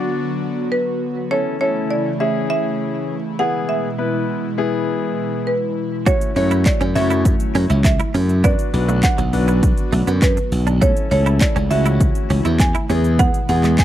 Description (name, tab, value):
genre	dance-pop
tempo	101 BPM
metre	4/4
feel	straight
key	unclear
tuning	A4 = 437 Hz
part	marimba with medium hard mallets	melody	0.0-13.8 s	B4 to G#5	-23 LUFS	right 4 dB	tape echo
part	clear concert grand piano	accompaniment	0.0-13.8 s	A3 to D5	-24 LUFS	left 7 dB	sidechain pumping
part	airy breathy pad	sustained chords	0.0-13.8 s	B2 to F#4	-25 LUFS	equal	chorus, sidechain pumping
part	direct-recorded clean electric guitar	riff	6.1-13.7 s	F#3 to F#4	-25 LUFS	right 6 dB	ensemble chorus
part	house drum kit	drums	6.1-13.8 s	handclaps, hi-hat, kick drum, shaker	-18 LUFS	equal	overdrive
part	glassy slap bass	bass	6.4-13.8 s	B1 to F#2	-17 LUFS	equal	sidechain pumping
room	little or no reverb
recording	dry, close 1970s-style studio recording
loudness	-16 LUFS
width	side -12 dB against mid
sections	0.0-13.8 A section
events	none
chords	0.0 Bm; 1.3 A/C#; 3.4 E; 6.1 F#m7; 8.4 Bm; 10.8 A; 12.9 E